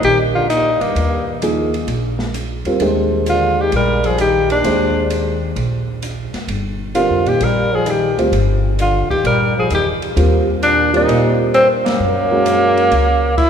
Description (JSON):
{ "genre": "modal jazz", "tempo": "130 BPM", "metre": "4/4", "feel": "swing 69% on 8ths", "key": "Eb major", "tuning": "A4 = 444 Hz", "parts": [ { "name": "mellow tenor saxophone", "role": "melody", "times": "0.0-13.5 s", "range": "Bb3 to Bb4", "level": "-16 LUFS", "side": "equal", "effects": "none" }, { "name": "clear trombone", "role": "second line", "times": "0.0-13.3 s", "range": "Gb2 to G3", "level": "-23 LUFS", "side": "left 3 dB", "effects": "none" }, { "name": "upright bass", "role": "bass", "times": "0.0-13.5 s", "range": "G1 to Bb2", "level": "-20 LUFS", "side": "equal", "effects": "none" }, { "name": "open jazz drum kit", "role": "drums", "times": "0.0-13.5 s", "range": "crash cymbal, hi-hat, kick drum, ride cymbal, snare drum", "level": "-29 LUFS", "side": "right 1 dB", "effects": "none" }, { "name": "dark upright piano", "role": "accompaniment", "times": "1.4-12.9 s", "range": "F3 to C5", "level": "-20 LUFS", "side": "right 1 dB", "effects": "none" } ], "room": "wet church reverb, RT60 3.5 s", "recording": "recorded in a church or concert hall", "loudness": "-13 LUFS", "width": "side -8 dB against mid", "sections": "0.0-13.5 A section", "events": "band accent 11.8", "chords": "0.0 Ebmaj9; 12.0 Gb" }